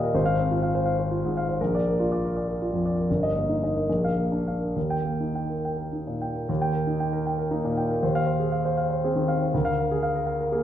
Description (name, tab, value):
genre	classical, romantic character piece for solo piano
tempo	67-84 BPM (dotted quarters)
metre	6/8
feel	rubato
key	Eb major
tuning	A4 = 440 Hz
part	warm concert grand piano	solo	0.0-10.6 s	G1 to G5	-23 LUFS	equal	none
room	wet recital hall reverb, RT60 1.6 s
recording	recorded in a church or concert hall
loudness	-23 LUFS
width	side -10 dB against mid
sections	0.0-6.5 A section; 6.5-10.6 A section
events	none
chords	0.2 Fm/Ab; 1.6 Bb; 3.1 Eb/G; 3.9 Bb; 4.8 Eb; 8.0 Fm7/Eb; 9.5 Bb7/D